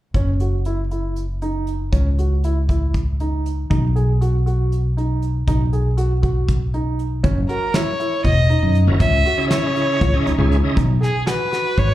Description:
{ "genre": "progressive instrumental, band music in an uneven meter", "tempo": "237 BPM (eighths)", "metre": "7/8", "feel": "straight", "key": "unclear", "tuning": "A4 = 440 Hz", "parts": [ { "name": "upright bass", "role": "bass", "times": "0.1-11.9 s", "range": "E1 to F#2", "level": "-18 LUFS", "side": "equal", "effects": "none" }, { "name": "soft brush drum kit", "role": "drums", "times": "0.1-11.9 s", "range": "hi-hat, kick drum, snare drum", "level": "-22 LUFS", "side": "equal", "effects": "none" }, { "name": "warm grand piano", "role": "arpeggios", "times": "0.2-11.8 s", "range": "C#4 to G#4", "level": "-26 LUFS", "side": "right 2 dB", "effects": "plate reverb, slapback echo" }, { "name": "warm violin", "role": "melody", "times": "7.5-11.9 s", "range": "G#4 to E5", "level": "-21 LUFS", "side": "left 1 dB", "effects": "plate reverb, slapback echo, digital delay" }, { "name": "bright tonewheel organ", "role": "accompaniment", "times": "8.9-10.8 s", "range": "C#3 to D#5", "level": "-22 LUFS", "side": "right 1 dB", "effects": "overdrive, chorus vibrato, fast rotary speaker, plate reverb, slapback echo" } ], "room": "little or no reverb", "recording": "live gig heard through the venue's PA, club reverb", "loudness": "-16 LUFS", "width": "side -14 dB against mid", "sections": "0.1-7.2 A section; 7.2-11.9 B section", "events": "none", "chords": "0.1 F#5; 1.9 C#madd9; 3.7 B; 7.2 F#7; 9.0 C#madd9; 10.8 B6" }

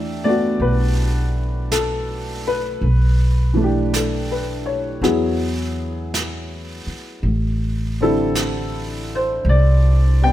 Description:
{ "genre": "jazz ballad", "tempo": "54 BPM", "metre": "4/4", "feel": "swing 69% on 8ths", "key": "E minor", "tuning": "A4 = 440 Hz", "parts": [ { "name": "warm upright piano", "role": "accompaniment", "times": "0.0-10.3 s", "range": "D3 to G5", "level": "-21 LUFS", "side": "left 1 dB", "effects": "none" }, { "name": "upright bass", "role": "bass", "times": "0.0-10.3 s", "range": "A1 to E2", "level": "-19 LUFS", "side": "equal", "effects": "none" }, { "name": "jazz brush drum kit", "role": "drums", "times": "0.6-10.3 s", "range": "brushed snare drum, hi-hat, snare drum", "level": "-30 LUFS", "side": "right 2 dB", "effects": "none" } ], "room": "little or no reverb", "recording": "none", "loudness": "-17 LUFS", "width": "side -13 dB against mid", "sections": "0.0-10.3 A section", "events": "none", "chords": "0.0 Em9; 2.8 G69/B; 5.0 E; 7.2 Am11" }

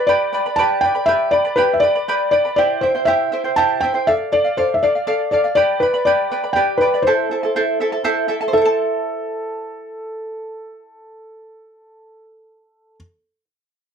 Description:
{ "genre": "andean folk, Andean ensemble", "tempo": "81 BPM (dotted quarters)", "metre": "6/8", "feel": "straight", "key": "A minor", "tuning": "A4 = 441 Hz", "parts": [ { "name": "felt-muted upright piano", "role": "melody", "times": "0.0-12.9 s", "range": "A4 to A5", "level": "-18 LUFS", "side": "left 1 dB", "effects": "none" }, { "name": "charango", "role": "accompaniment", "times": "0.0-13.1 s", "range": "E4 to B5", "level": "-19 LUFS", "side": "right 1 dB", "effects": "none" } ], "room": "little or no reverb", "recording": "dry, close 1970s-style studio recording", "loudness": "-15 LUFS", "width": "side -7 dB against mid", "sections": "0.0-8.5 A section; 8.5-11.5 B section", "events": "none", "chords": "0.0 G; 2.6 C; 4.1 Dm; 5.6 G; 7.0 Am" }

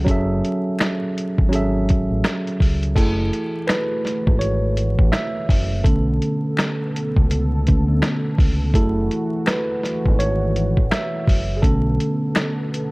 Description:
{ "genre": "lo-fi hip hop", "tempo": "83 BPM", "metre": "4/4", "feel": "swing 62% on 16ths", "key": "F# minor", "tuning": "A4 = 441 Hz", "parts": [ { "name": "mellow tine electric piano", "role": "accompaniment", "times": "0.0-12.9 s", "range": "D3 to F#5", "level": "-22 LUFS", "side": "right 1 dB", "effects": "low-pass filter" }, { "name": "deep dub fingered electric bass", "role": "bass", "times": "0.0-12.0 s", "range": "F#1 to D2", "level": "-22 LUFS", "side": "equal", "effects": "none" }, { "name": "lo-fi sampler-style drum kit", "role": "drums", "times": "0.1-12.9 s", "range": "crash cymbal, finger snaps, hi-hat, kick drum, snare drum", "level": "-20 LUFS", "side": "equal", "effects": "vintage 12-bit sampler grit" }, { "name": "finger snaps", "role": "percussion", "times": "0.8-12.6 s", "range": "none", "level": "-38 LUFS", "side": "left 3 dB", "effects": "none" }, { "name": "warm analog pad", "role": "sustained chords", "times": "3.0-12.9 s", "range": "B2 to A4", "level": "-29 LUFS", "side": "equal", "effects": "chorus, low-pass filter" } ], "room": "little or no reverb", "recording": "vinyl crackle", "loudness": "-17 LUFS", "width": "side -24 dB against mid", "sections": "0.0-3.0 A section; 3.0-12.9 B section", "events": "tine electric piano solo 3.0-12.9", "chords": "0.0 F#m7; 5.8 Bm7; 8.7 F#m7; 11.6 Bm7" }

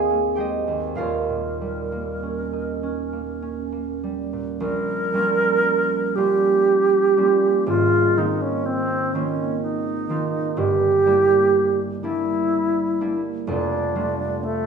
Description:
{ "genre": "classical, impressionist duo for alto flute and harp", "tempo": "48-64 BPM", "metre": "3/4", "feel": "rubato", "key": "Bb dorian", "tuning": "A4 = 438 Hz", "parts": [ { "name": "alto flute", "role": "melody", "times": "0.0-14.7 s", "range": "A3 to Bb4", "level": "-20 LUFS", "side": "right 2 dB", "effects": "none" }, { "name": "concert harp", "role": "accompaniment", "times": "0.0-14.7 s", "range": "Eb1 to Ab6", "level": "-24 LUFS", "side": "right 3 dB", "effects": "none" } ], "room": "wet recital hall reverb, RT60 1.4 s", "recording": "small room ambience", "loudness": "-19 LUFS", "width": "side -6 dB against mid", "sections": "0.0-4.6 A section; 4.6-14.7 B section", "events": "none", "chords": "0.0 Abadd9; 1.0 Eb9; 4.6 Bbm6; 7.7 Ab69; 10.6 Gm6; 13.5 F69" }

